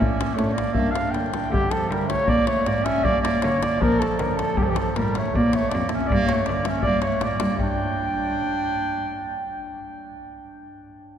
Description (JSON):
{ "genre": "balkan folk, Balkan brass band", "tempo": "158 BPM", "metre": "2/4", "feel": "swing 54% on 16ths", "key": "G dorian sharp4", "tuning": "A4 = 440 Hz", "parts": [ { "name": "mellow flugelhorn", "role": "melody", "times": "0.0-9.9 s", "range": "G4 to G5", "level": "-25 LUFS", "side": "right 1 dB", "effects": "none" }, { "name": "bright clarinet", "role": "second line", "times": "0.0-9.9 s", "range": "D3 to D4", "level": "-27 LUFS", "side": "right 2 dB", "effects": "none" }, { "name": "clear euphonium", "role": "accompaniment", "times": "0.0-1.3 s", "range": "A3 to Bb3", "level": "-34 LUFS", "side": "equal", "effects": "none" }, { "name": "warm French horn", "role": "accompaniment", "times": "0.0-1.3 s", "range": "C#4 to D4", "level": "-37 LUFS", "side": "left 3 dB", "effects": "none" }, { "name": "clear cello", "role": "bass", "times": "0.0-9.9 s", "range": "F2 to D3", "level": "-26 LUFS", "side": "equal", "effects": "none" }, { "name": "davul", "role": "percussion", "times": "0.0-7.8 s", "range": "none", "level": "-28 LUFS", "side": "left 1 dB", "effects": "none" } ], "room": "wet cathedral reverb, RT60 5.8 s", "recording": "recorded in a church or concert hall", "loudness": "-20 LUFS", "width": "side -9 dB against mid", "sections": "0.0-1.5 A section; 1.5-7.6 B section; 7.6-9.1 C section", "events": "none", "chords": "0.0 A; 0.8 Gm; 1.5 G5; 2.3 Bb7#9; 3.1 G5; 3.8 Bb; 4.6 Gm9b5; 5.3 Bb5; 6.1 G5; 6.9 Gm; 7.6 G5" }